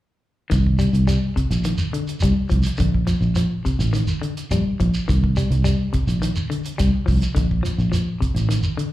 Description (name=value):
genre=afrobeat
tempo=105 BPM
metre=4/4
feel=straight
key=C dorian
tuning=A4 = 440 Hz
part: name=semi-hollow electric guitar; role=arpeggios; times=0.5-8.9 s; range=C3 to G3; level=-24 LUFS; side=left 3 dB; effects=slapback echo
part: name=fingered electric bass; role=bass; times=0.5-8.6 s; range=A1 to C2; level=-19 LUFS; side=right 1 dB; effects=none
part: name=damped 70s drum kit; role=drums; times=0.5-8.9 s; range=hi-hat, kick drum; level=-24 LUFS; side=equal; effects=none
part: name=shekere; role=percussion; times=0.5-8.8 s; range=none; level=-29 LUFS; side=right 1 dB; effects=none
room=studio ambience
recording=live gig heard through the venue's PA, club reverb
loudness=-18 LUFS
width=side -15 dB against mid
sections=0.5-8.9 A section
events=none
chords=0.5 Cm; 2.8 Bb; 5.1 Cm; 7.4 Bbmaj9